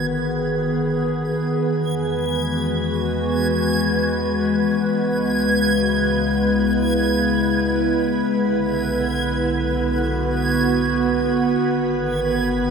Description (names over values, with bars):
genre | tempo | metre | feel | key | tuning
ambient | 54 BPM | 3/4 | straight | B dorian | A4 = 438 Hz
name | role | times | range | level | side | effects
warbly tape-like pad | sustained chords | 0.0-12.7 s | C#3 to B4 | -20 LUFS | left 2 dB | chorus, built-in reverb, shimmer reverb
warm sub bass | bass | 0.0-12.7 s | G#1 to E2 | -30 LUFS | right 1 dB | none
organ-like drone | drone | 0.0-12.7 s | B3 to B4 | -25 LUFS | right 5 dB | ensemble chorus, built-in reverb
backwards swelling texture | texture | 0.0-12.7 s | G#6 | -27 LUFS | right 2 dB | built-in reverb, shimmer reverb
room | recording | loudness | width
wet huge ambient reverb, RT60 7.9 s | none | -18 LUFS | side -6 dB against mid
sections
0.0-12.7 A section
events
fade-in on sub bass 0.0-12.7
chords
0.0 G#m; 1.6 Eadd9; 5.0 C#m7; 8.3 Bm; 11.6 G#m